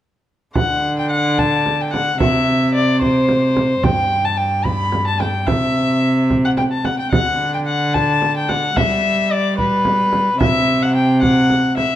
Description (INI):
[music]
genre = classical, renaissance-style consort dance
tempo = 73 BPM (dotted quarters)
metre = 6/8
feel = straight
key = D mixolydian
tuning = A4 = 440 Hz
[part]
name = dark violin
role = melody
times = 0.6-12.0 s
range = B4 to B5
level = -18 LUFS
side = left 2 dB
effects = none
[part]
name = rich cello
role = bass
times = 0.6-12.0 s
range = G2 to G3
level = -18 LUFS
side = right 1 dB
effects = none
[part]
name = frame drum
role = percussion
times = 0.6-12.0 s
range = none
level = -22 LUFS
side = right 2 dB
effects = none
[sound]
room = moderate recital hall reverb, RT60 1.7 s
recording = none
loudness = -14 LUFS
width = side -12 dB against mid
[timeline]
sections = 0.6-12.0 A section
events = none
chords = 0.6 D; 2.2 C; 3.8 G; 5.5 C; 7.1 D; 8.8 G; 10.4 C